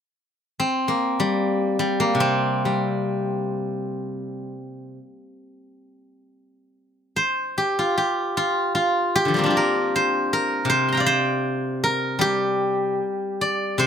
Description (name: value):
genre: chinese traditional, Chinese solo plucked strings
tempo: free time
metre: none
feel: none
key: C shang mode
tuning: A4 = 440 Hz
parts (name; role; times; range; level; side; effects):
- steel-string zither; solo; 0.6-13.9 s; C3 to C6; -20 LUFS; equal; none
room: light reverb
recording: close, detailed microphones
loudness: -20 LUFS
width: side -8 dB against mid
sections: 0.0-7.6 A section; 7.6-13.9 B section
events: none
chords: none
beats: free time